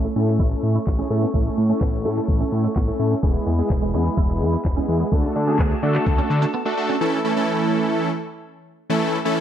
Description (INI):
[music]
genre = dance-pop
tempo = 127 BPM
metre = 4/4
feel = straight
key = A major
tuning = A4 = 441 Hz
[part]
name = big bright polysynth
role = accompaniment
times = 0.0-9.4 s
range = E3 to A4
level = -22 LUFS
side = equal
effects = sidechain pumping
[part]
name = mellow woodwind section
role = sustained chords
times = 0.0-7.0 s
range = F#4 to C#6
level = -34 LUFS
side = left 2 dB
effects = sidechain pumping
[part]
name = clean electric guitar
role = riff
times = 0.0-7.0 s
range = G#3 to E4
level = -30 LUFS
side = right 7 dB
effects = ensemble chorus
[part]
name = fat analog bass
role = bass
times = 0.0-6.5 s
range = E1 to D3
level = -22 LUFS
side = equal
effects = sidechain pumping
[part]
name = smooth R&B drum kit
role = drums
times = 0.0-6.5 s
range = handclaps, hi-hat, kick drum, shaker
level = -21 LUFS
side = equal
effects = none
[sound]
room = light reverb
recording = bright 1980s-style digital production, low-pass filter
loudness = -18 LUFS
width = side -10 dB against mid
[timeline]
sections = 0.0-7.0 A section; 7.0-9.4 B section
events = filter sweep 0.0-7.0; break 6.5-7.0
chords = 0.0 A; 3.2 E; 5.1 D; 7.0 A